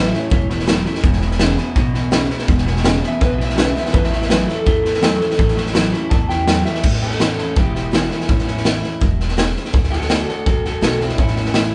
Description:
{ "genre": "rockabilly", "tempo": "166 BPM", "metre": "4/4", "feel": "straight", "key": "A major", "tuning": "A4 = 440 Hz", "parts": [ { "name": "electric guitar through a small old amp", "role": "melody", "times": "0.0-11.7 s", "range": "C4 to A5", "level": "-25 LUFS", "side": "equal", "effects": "none" }, { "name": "picked steel-string acoustic guitar", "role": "accompaniment", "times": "0.0-11.7 s", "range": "E2 to F#4", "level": "-29 LUFS", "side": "equal", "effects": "none" }, { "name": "electric guitar through a small old amp", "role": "riff", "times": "0.0-6.8 s", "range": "E2 to F#3", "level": "-25 LUFS", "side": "equal", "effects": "none" }, { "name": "upright bass", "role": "bass", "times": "0.0-11.7 s", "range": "E1 to E2", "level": "-25 LUFS", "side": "equal", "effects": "none" }, { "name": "raw garage drum kit", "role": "drums", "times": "0.1-11.7 s", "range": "crash cymbal, hi-hat, kick drum, snare drum", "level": "-20 LUFS", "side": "equal", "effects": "none" } ], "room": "moderate large studio reverb, RT60 1.3 s", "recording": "band playing live in one room, nothing above 10.4 kHz", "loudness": "-17 LUFS", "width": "mono", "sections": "0.0-6.8 A section; 6.8-11.7 B section", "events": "clean electric guitar solo 0.0-6.8", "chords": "0.0 A; 1.0 E; 3.9 A; 9.7 D; 11.2 A", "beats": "0.31 0.68 | 1.04 1.40 1.76 2.12 | 2.49 2.85 3.21 3.57 | 3.94 4.30 4.66 5.02 | 5.38 5.75 6.11 6.47 | 6.83 7.20 7.56 7.92 | 8.29 8.65 9.01 9.37 | 9.74 10.10 10.46 10.82 | 11.19 11.55" }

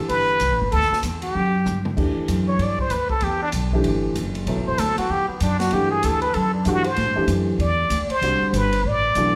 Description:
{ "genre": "modal jazz", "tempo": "192 BPM", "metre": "4/4", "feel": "swing 62% on 8ths", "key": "E minor", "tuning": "A4 = 440 Hz", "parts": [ { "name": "warm baby grand piano", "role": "accompaniment", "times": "0.0-9.3 s", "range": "D3 to A4", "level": "-28 LUFS", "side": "equal", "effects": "none" }, { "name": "trumpet with plunger mute", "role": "melody", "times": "0.1-9.3 s", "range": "B3 to D5", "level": "-24 LUFS", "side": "equal", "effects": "none" }, { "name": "upright bass", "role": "bass", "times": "0.1-9.4 s", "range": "E1 to A2", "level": "-26 LUFS", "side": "equal", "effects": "none" }, { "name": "open jazz drum kit", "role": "drums", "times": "0.1-9.2 s", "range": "crash cymbal, hi-hat, kick drum, ride cymbal, snare drum, toms", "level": "-34 LUFS", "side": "equal", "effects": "none" } ], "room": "wet recital hall reverb, RT60 1.3 s", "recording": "recorded in a church or concert hall", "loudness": "-21 LUFS", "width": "mono", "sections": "0.0-2.0 A section; 2.0-9.4 B section", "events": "drum fill 1.7-2.0; muted trumpet solo 2.0-9.4", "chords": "0.0 Dsus4; 2.0 Em11; 7.0 Am11", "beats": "0.10 0.41 | 0.72 1.03 1.35 1.66 | 1.97 2.28 2.60 2.91 | 3.22 3.53 3.85 4.16 | 4.47 4.78 5.09 5.41 | 5.72 6.03 6.34 6.66 | 6.97 7.28 7.59 7.91 | 8.22 8.53 8.85 9.16" }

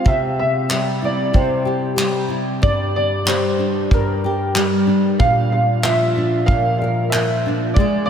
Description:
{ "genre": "acoustic pop", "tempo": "94 BPM", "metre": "4/4", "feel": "straight", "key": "unclear", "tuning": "A4 = 440 Hz", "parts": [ { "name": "dark upright piano", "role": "melody", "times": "0.0-8.1 s", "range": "Bb4 to F5", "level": "-21 LUFS", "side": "right 1 dB", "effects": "analog chorus, analog delay" }, { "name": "nylon-string guitar", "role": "accompaniment", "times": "0.0-8.1 s", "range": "G2 to Bb4", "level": "-18 LUFS", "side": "left 1 dB", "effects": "double-tracked left and right" }, { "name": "unplugged drum kit", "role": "drums", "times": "0.1-7.9 s", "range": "handclaps, kick drum", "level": "-20 LUFS", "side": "equal", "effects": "none" } ], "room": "wet cathedral reverb, RT60 5.0 s", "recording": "dreamy mix soaked in reverb", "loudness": "-16 LUFS", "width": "side -8 dB against mid", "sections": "0.0-8.1 A section", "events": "none", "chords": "0.1 C; 2.6 Gm; 5.2 Bb", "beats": "| 0.06 0.71 1.35 1.99 | 2.63 3.27 3.92 4.56 | 5.20 5.84 6.48 7.12 | 7.76" }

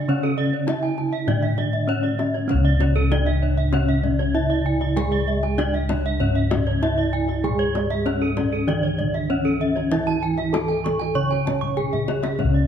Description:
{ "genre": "Balinese gamelan", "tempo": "97 BPM", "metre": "4/4", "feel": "straight", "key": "C# pelog", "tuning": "A4 = 439 Hz", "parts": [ { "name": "gamelan-type bronze metallophone", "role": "melody", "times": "0.0-12.7 s", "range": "C#4 to C#5", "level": "-24 LUFS", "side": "equal", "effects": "none" }, { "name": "gamelan-type bronze metallophone", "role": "accompaniment", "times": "0.0-12.7 s", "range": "C#3 to C#4", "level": "-29 LUFS", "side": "right 5 dB", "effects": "none" }, { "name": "gamelan-type bronze metallophone", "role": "arpeggios", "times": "0.0-12.7 s", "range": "A4-20c to C#6", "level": "-30 LUFS", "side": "right 6 dB", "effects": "none" }, { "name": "gamelan-type bossed gongs", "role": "bass", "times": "0.0-12.7 s", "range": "C#2 to G#4-30c", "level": "-23 LUFS", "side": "left 1 dB", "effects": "none" }, { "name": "gamelan-type bronze metallophone", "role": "arpeggios", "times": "0.1-12.5 s", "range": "C#5 to C#6", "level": "-29 LUFS", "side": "left 2 dB", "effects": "none" }, { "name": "kendang", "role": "percussion", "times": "0.2-12.5 s", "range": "none", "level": "-31 LUFS", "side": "left 5 dB", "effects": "none" } ], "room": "light reverb", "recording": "close, detailed microphones, lossy compression artefacts", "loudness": "-19 LUFS", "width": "side -8 dB against mid", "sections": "0.0-2.5 A section; 2.5-12.7 B section", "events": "drum fill 11.6-12.4", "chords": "none", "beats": "| 0.09 0.68 1.27 1.88 | 2.49 3.11 3.73 4.35 | 4.97 5.58 6.20 6.82 | 7.44 8.06 8.68 9.29 | 9.91 10.53 11.15 11.77 | 12.39" }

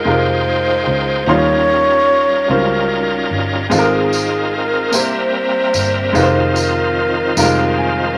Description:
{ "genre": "slow gospel", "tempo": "49 BPM (dotted quarters)", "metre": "6/8", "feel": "straight", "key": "unclear", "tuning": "A4 = 441 Hz", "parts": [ { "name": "mellow alto flute", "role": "melody", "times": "0.0-8.2 s", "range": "Ab4 to Db5", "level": "-20 LUFS", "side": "equal", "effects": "none" }, { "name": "clear upright piano", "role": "accompaniment", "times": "0.0-8.2 s", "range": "Ab2 to C6", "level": "-20 LUFS", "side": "equal", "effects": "none" }, { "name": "bright tonewheel organ", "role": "sustained chords", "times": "0.0-8.2 s", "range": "Eb3 to G5", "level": "-22 LUFS", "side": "equal", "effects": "slow rotary speaker, overdrive, chorus vibrato" }, { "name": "fingered electric bass", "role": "bass", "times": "0.1-8.1 s", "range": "F1 to Eb2", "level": "-24 LUFS", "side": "equal", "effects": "none" }, { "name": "tambourine", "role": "percussion", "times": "3.7-7.7 s", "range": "none", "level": "-25 LUFS", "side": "equal", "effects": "none" } ], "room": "wet studio reverb, RT60 0.6 s", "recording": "none", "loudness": "-15 LUFS", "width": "mono", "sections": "0.0-8.2 A section", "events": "upright piano fill 7.4-8.2", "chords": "0.0 Fm9; 1.3 Eb13; 3.7 Ab69; 4.9 C7; 6.2 Fm9", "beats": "0.05 | 1.27 2.49 | 3.71 4.93 | 6.15 7.37" }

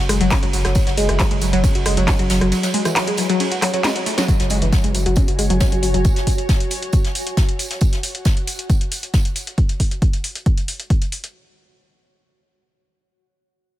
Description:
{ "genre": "driving peak-time techno", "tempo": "136 BPM", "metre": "4/4", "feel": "straight", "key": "unclear", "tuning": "A4 = 440 Hz", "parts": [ { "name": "analog pluck", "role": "riff", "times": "0.0-6.0 s", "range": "E3 to F#4", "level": "-21 LUFS", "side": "equal", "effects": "chorus, phaser, cassette tape, sidechain pumping, diffuse ambient delay" }, { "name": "saturated sub bass", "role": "bass", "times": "0.0-6.0 s", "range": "F#1", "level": "-21 LUFS", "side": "equal", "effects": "overdrive, sidechain pumping, low-pass filter" }, { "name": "jazz brush drum kit", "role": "drums", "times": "0.1-9.6 s", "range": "hi-hat, snare drum, tambourine", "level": "-31 LUFS", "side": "right 1 dB", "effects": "sidechain pumping on hats, high-pass filter on hats, high-pass filter on snare, sidechain pumping on perc, high-pass filter on perc, high-pass filter on room" }, { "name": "techno drum kit", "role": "drums", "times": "0.1-11.3 s", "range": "handclaps, hi-hat, ride cymbal, rim click, snare drum", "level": "-24 LUFS", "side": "equal", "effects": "sidechain pumping on hats, sidechain pumping on cymbals" }, { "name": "electronic kick drum", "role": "drums", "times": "0.3-11.0 s", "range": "none", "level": "-17 LUFS", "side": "equal", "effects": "none" }, { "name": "granular cloud pad", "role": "texture", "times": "4.9-9.6 s", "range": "F#4 to G#5", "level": "-28 LUFS", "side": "equal", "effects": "built-in reverb, wide subtle chorus, sidechain pumping" } ], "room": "light reverb, small room ambience", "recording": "none", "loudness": "-16 LUFS", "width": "side -14 dB against mid", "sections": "0.0-4.3 A section; 4.3-11.3 B section", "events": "drop 0.0-4.3; drum fill 3.8-4.3; fade-out on ambient pad 4.3-9.6; filter sweep on synth arpeggio sound 4.3-6.0", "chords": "0.0 N.C.; 4.3 F#5", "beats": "0.31 | 0.76 1.20 1.64 2.08 | 2.52 2.96 3.40 3.84 | 4.28 4.72 5.17 5.61 | 6.05 6.49 6.93 7.37 | 7.81 8.26 8.70 9.14 | 9.58 10.02 10.46 10.90" }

